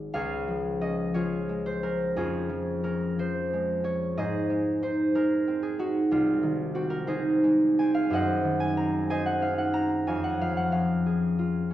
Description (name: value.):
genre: classical, solo harp piece.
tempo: 61 BPM (dotted quarters).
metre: 6/8.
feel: rubato.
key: Db major.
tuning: A4 = 440 Hz.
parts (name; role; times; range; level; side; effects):
concert harp; solo; 0.0-11.7 s; Ab1 to Bb5; -24 LUFS; equal; none.
room: wet recital hall reverb, RT60 1.4 s.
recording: heard from further back in the room.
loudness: -24 LUFS.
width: side -13 dB against mid.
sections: 0.1-11.7 A section.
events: none.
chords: 0.1 Db; 2.1 Db/F; 4.2 Ab; 6.1 Ab/C; 8.1 Ab7/Gb; 10.1 Db/F.